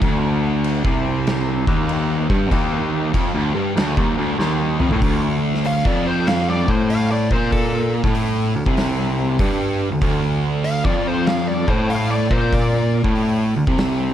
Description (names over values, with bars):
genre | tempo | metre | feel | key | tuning
stoner and doom metal | 96 BPM | 4/4 | swing 65% on 8ths | D minor | A4 = 438 Hz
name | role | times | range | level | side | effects
fuzz guitar | riff | 0.0-14.1 s | D2 to C3 | -23 LUFS | right 1 dB | distortion
sludgy distorted guitar | riff | 0.0-14.1 s | D2 to C3 | -23 LUFS | equal | overdrive
mellow baritone saxophone | bass | 0.0-14.1 s | C2 to Bb2 | -23 LUFS | equal | overdrive
oversized low-tuned drum kit | drums | 0.0-14.0 s | crash cymbal, hi-hat, kick drum, snare drum, toms | -23 LUFS | equal | none
fuzz lead guitar | melody | 5.7-12.9 s | A4 to F5 | -25 LUFS | left 2 dB | wah, distortion, analog delay
room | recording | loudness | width
light reverb, studio ambience | dark, warm production | -17 LUFS | side -10 dB against mid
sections
0.0-5.0 A section; 5.0-14.1 B section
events
drum fill 4.4-5.0; lead electric guitar solo 5.0-14.1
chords
0.0 Dm